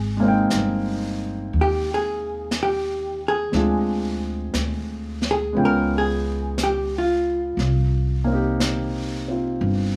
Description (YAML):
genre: jazz ballad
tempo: 59 BPM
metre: 4/4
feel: swing 68% on 8ths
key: unclear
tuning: A4 = 439 Hz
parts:
  - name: hollow-body jazz guitar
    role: melody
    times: 0.0-8.5 s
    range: E#4 to Bb4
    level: -26 LUFS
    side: equal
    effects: none
  - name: upright bass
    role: bass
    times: 0.0-10.0 s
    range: G1 to Eb2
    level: -28 LUFS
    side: equal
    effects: none
  - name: warm grand piano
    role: accompaniment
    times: 0.2-10.0 s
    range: Ab3 to G5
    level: -26 LUFS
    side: equal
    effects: none
  - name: jazz brush drum kit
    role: drums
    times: 0.5-10.0 s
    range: brushed snare drum, hi-hat, snare drum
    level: -33 LUFS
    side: equal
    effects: none
room: light reverb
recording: none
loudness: -23 LUFS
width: mono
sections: 0.0-10.0 A section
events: hollow-body jazz guitar solo 0.0-10.0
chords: 0.0 Abmaj9; 3.5 Dm7b5; 5.6 C#7#11; 7.6 Cm7